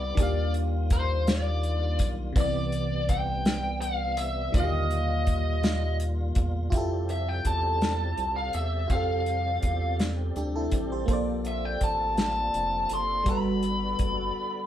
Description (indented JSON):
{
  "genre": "slow six-eight R&B",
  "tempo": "55 BPM (dotted quarters)",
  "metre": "6/8",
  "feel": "straight",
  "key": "unclear",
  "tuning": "A4 = 442 Hz",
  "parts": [
    { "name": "bluesy overdriven lead guitar", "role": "melody", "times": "0.0-14.7 s", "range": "C5 to C6", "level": "-30 LUFS", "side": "left 1 dB", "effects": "distortion" },
    { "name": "FM electric piano", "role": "accompaniment", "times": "0.0-14.7 s", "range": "C3 to F5", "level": "-32 LUFS", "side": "equal", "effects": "chorus, phaser" },
    { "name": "tonewheel organ", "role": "sustained chords", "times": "0.0-14.7 s", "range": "Bb2 to A4", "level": "-38 LUFS", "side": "left 1 dB", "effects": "overdrive, chorus vibrato, slow rotary speaker" },
    { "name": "rubbery square bass", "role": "bass", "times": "0.0-14.3 s", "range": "F1 to F2", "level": "-30 LUFS", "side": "equal", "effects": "none" },
    { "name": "warm soul drum kit", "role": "drums", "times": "0.2-14.2 s", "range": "hi-hat, kick drum, snare drum", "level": "-27 LUFS", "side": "equal", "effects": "none" }
  ],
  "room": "moderate studio reverb, RT60 0.8 s",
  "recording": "band playing live in one room",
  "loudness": "-24 LUFS",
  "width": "side -11 dB against mid",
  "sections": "0.0-6.7 A section; 6.7-14.7 B section",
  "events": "break 14.4-14.7",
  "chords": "0.2 Ebmaj9; 2.4 Cmaj9; 4.5 Ebmaj9; 6.7 Fmaj9; 11.1 Bbmaj9; 13.3 Gmaj9",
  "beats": "| 0.17 1.26 | 2.35 3.45 | 4.54 5.63 | 6.72 7.81 | 8.90 9.99 | 11.08 12.17 | 13.26 14.36"
}